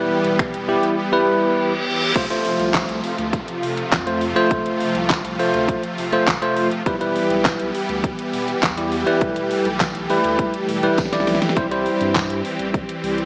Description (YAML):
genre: dance-pop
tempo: 102 BPM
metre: 4/4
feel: straight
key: unclear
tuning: A4 = 440 Hz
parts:
  - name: bell-like tine electric piano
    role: accompaniment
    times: 0.0-12.4 s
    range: G3 to D5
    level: -23 LUFS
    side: equal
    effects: sidechain pumping
  - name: supersaw chords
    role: sustained chords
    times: 0.0-13.3 s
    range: C3 to G4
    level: -26 LUFS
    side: equal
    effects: sidechain pumping
  - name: warm sub bass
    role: bass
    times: 0.0-13.2 s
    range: E1 to G2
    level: -35 LUFS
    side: equal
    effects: sidechain pumping
  - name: pop drum kit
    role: drums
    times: 0.2-13.3 s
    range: crash cymbal, finger snaps, handclaps, hi-hat, kick drum, snare drum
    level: -26 LUFS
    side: equal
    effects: none
  - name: reverse cymbal and downlifter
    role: sound effects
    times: 1.5-6.9 s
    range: none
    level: -30 LUFS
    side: equal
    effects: none
  - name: tambourine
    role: percussion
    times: 2.7-12.3 s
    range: none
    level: -40 LUFS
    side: equal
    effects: none
room: moderate plate reverb, RT60 2.2 s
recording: worn, warbling old tape, cassette tape, warbly pitch drift, small speaker sound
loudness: -20 LUFS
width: mono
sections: 0.0-2.2 A section; 2.2-13.3 B section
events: reverse cymbal 1.5-2.2; drum fill 11.0-11.6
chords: 0.0 Em; 2.2 F; 6.9 Em; 11.6 C